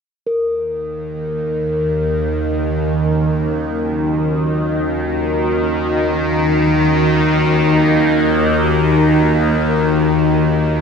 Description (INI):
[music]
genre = dark ambient drone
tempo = free time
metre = none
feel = none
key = Eb minor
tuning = A4 = 437 Hz
[part]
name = deep dark ambient pad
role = sustained chords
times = 3.6-10.8 s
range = Db4 to Bb4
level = -22 LUFS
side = equal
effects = chorus, built-in reverb
[part]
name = bowed-like drone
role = drone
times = 0.8-10.8 s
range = Eb2 to Eb3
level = -15 LUFS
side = equal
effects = built-in reverb, phaser
[part]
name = bronze singing bowl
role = texture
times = 0.3-10.8 s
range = Bb4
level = -24 LUFS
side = left 2 dB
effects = stereo widening
[sound]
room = wet spring reverb, RT60 2.1 s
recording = none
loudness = -14 LUFS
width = side -6 dB against mid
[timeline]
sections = 0.3-10.8 A section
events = fade-out on ambient pad 0.3-10.8; fade-out on singing bowl 0.3-10.8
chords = 0.3 Ebm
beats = free time